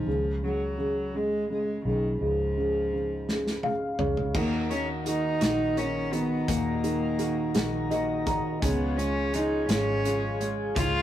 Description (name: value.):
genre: six-eight pop ballad.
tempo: 56 BPM (dotted quarters).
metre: 6/8.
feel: straight.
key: Eb minor.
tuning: A4 = 442 Hz.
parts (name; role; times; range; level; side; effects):
warm cello; melody; 0.0-11.0 s; Eb3 to F4; -31 LUFS; equal; none.
warm upright piano; accompaniment; 0.0-11.0 s; Ab2 to Bb5; -29 LUFS; right 1 dB; none.
vintage muted fingered electric bass; bass; 0.0-11.0 s; Ab1 to Eb2; -33 LUFS; equal; none.
loose indie drum kit; drums; 3.3-10.9 s; crash cymbal, hi-hat, kick drum, snare drum, toms; -30 LUFS; equal; none.
direct-recorded clean electric guitar; arpeggios; 4.3-11.0 s; Db3 to Gb4; -37 LUFS; left 4 dB; none.
mellow tonewheel organ; sustained chords; 4.4-11.0 s; F4 to Bb5; -36 LUFS; left 1 dB; slow rotary speaker.
room: wet small room ambience, RT60 0.5 s.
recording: rough rehearsal-room recording.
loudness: -25 LUFS.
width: side -12 dB against mid.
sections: 0.0-4.3 A section; 4.3-11.0 B section.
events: upright piano fill 3.3-4.3, 7.6-8.6; drum fill 3.3-4.3.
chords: 0.1 Db; 4.3 Ebm; 8.6 Db.